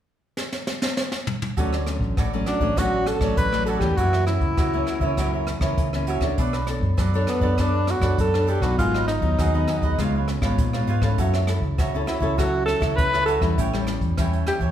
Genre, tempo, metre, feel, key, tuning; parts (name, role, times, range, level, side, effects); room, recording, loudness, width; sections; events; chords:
samba and choro; 100 BPM; 4/4; straight; D major; A4 = 442 Hz
jazz brush drum kit; drums; 0.4-14.7 s; hi-hat, kick drum, rim click, snare drum, toms; -26 LUFS; equal
cavaquinho; accompaniment; 1.6-14.7 s; D4 to G5; -29 LUFS; right 4 dB
nylon-string guitar; accompaniment; 1.6-14.7 s; F#2 to C#5; -28 LUFS; left 2 dB
hollow-body short-scale fingered electric bass; bass; 1.6-14.7 s; G#1 to Bb2; -25 LUFS; equal
mellow alto saxophone; melody; 2.5-14.6 s; B3 to B4; -24 LUFS; equal
moderate recital hall reverb, RT60 1.4 s; recorded in a church or concert hall; -20 LUFS; side -10 dB against mid
0.0-1.6 A section; 1.6-14.7 B section
drum fill 0.4-1.6
0.0 N.C.; 1.6 Dmaj7; 4.0 F#7; 6.4 Bm9; 8.8 G#m7; 10.0 C#7; 11.2 F#m7; 13.6 A7